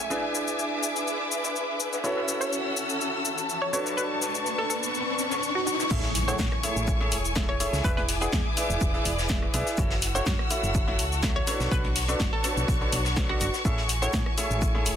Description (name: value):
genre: piano house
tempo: 124 BPM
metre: 4/4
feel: straight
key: A major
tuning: A4 = 445 Hz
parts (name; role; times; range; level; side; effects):
- warm symphonic violin section; sustained chords; 0.0-15.0 s; D4 to E6; -33 LUFS; left 1 dB; sidechain pumping
- clear grand piano; riff; 0.0-14.9 s; C#4 to F#5; -32 LUFS; right 1 dB; sidechain pumping, digital delay
- impact and riser; sound effects; 3.2-7.8 s; none; -34 LUFS; left 1 dB; none
- dark studio string section; texture; 0.0-15.0 s; A3 to C#6; -32 LUFS; left 1 dB; sidechain pumping
- house drum kit; drums; 0.1-15.0 s; crash cymbal, hi-hat, rim click, shaker, snare drum; -31 LUFS; left 2 dB; none
- vintage brush drum kit; drums; 0.1-15.0 s; hi-hat, shaker, snare drum; -38 LUFS; left 2 dB; sidechain pumping on hats, high-pass filter on hats, low-pass filter on hats, soft clipping on snare, high-pass filter on snare, low-pass filter on snare, sidechain pumping on perc, high-pass filter on perc, low-pass filter on perc, high-pass filter on room, low-pass filter on room
- hollow square pluck; melody; 2.4-14.2 s; F#4 to C#5; -32 LUFS; right 1 dB; chorus, digital delay
- solid FM bass; bass; 5.9-15.0 s; E1 to A2; -30 LUFS; equal; sidechain pumping
- electronic kick drum; drums; 5.9-14.7 s; none; -28 LUFS; equal; none
room: light reverb, small room reverb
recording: dense, heavily limited modern master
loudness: -24 LUFS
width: side -9 dB against mid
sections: 0.0-5.9 A section; 5.9-15.0 B section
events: riser 3.2-5.9; drop 5.9-15.0; impact 5.9-7.8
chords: 0.1 E7; 2.0 F#m7; 3.7 Bm9; 5.9 Amaj7; 7.8 E7; 9.8 F#m7; 11.5 Bm9; 13.7 Amaj7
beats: | 0.10 0.59 1.07 1.55 | 2.04 2.52 3.00 3.49 | 3.97 4.46 4.94 5.42 | 5.91 6.39 6.88 7.36 | 7.84 8.33 8.81 9.30 | 9.78 10.26 10.75 11.23 | 11.71 12.20 12.68 13.17 | 13.65 14.13 14.62